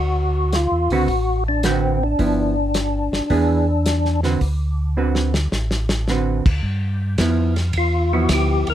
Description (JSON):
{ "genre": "soul jazz organ trio", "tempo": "108 BPM", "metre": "4/4", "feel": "swing 69% on 8ths", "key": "G mixolydian", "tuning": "A4 = 437 Hz", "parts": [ { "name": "percussive tonewheel organ", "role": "melody", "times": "0.0-4.2, 7.8-8.7 s", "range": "C4 to Bb4", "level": "-21 LUFS", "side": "left 2 dB", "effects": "slow rotary speaker, overdrive, chorus vibrato" }, { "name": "tonewheel organ", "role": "bass", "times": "0.0-8.7 s", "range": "G1 to G2", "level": "-20 LUFS", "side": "equal", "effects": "chorus vibrato, slow rotary speaker" }, { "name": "warm soul drum kit", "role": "drums", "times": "0.5-8.7 s", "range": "crash cymbal, hi-hat, kick drum, ride cymbal, snare drum", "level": "-23 LUFS", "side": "equal", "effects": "none" }, { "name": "vintage hollow-body jazz guitar", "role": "accompaniment", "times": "0.9-8.7 s", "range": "D3 to B4", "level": "-21 LUFS", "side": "right 4 dB", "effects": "none" } ], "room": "little or no reverb", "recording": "close, detailed microphones", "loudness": "-17 LUFS", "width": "side -11 dB against mid", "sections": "0.0-6.6 A section; 6.6-8.7 B section", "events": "drum fill 5.0-6.1; tonewheel organ solo 6.6-8.7", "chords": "0.0 D13; 2.2 G6; 3.3 E7; 4.4 D6; 6.6 G6", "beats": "0.53 1.08 1.64 | 2.19 2.75 3.30 3.86 | 4.41 4.97 5.52 6.08 | 6.63 7.18 7.74 8.29" }